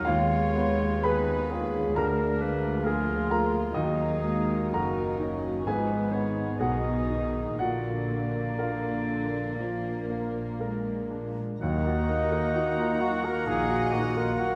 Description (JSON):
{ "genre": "classical, romantic movement for piano and orchestra", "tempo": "58-68 BPM", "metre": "4/4", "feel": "rubato", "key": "Eb minor", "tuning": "A4 = 440 Hz", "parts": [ { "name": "clear baby grand piano", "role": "melody", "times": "0.0-14.6 s", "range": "D2 to Cb6", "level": "-32 LUFS", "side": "equal", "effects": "none" }, { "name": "warm symphonic violin section", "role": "melody", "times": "0.0-14.6 s", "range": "Ab4 to Bb5", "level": "-44 LUFS", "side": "equal", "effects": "none" }, { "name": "clear clarinet", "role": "second line", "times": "0.0-14.6 s", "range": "Bb3 to Eb5", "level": "-39 LUFS", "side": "equal", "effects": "none" }, { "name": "warm symphonic violin section", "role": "second line", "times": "0.0-14.6 s", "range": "Bb3 to Eb5", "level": "-42 LUFS", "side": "equal", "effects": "none" }, { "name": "dark symphonic viola section", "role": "accompaniment", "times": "0.0-14.6 s", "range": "D3 to Gb4", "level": "-38 LUFS", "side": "equal", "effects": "none" }, { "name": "dark French horn section", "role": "sustained chords", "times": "0.0-14.6 s", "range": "Bb3 to Ab4", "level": "-38 LUFS", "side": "equal", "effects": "none" }, { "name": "dark symphonic double bass section", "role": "bass", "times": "0.1-14.2 s", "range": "Gb1 to Eb2", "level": "-37 LUFS", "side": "equal", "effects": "none" }, { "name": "warm studio cello section", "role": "bass", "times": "0.1-14.2 s", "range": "D2 to Cb3", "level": "-37 LUFS", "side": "equal", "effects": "none" }, { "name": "clear oboe", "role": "second line", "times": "11.6-14.6 s", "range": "Gb5", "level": "-38 LUFS", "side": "equal", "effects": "none" }, { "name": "mellow hollow wooden flute", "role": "second line", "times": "11.6-14.6 s", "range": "Eb5 to Bb5", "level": "-38 LUFS", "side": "equal", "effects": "none" }, { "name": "mellow trumpet", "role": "stabs", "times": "11.6-14.6 s", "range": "Eb4 to Bb4", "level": "-34 LUFS", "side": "equal", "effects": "none" }, { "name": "warm tuba", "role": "bass", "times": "11.6-14.2 s", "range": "Bb1 to Eb2", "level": "-39 LUFS", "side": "equal", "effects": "none" } ], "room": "wet scoring stage reverb, RT60 1.5 s", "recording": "none", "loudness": "-28 LUFS", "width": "mono", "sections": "0.0-11.6 A section; 11.6-14.6 B section", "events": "none", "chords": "0.1 Fm7b5/Eb; 2.0 Bb7/D; 3.7 Ebm; 5.7 Abm; 7.6 Bb; 11.6 Ebm", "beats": "| 0.06 1.04 1.96 2.85 | 3.75 4.72 5.66 6.60 | 7.58 8.59 9.60 10.59 | 11.61 12.56 13.48 14.40" }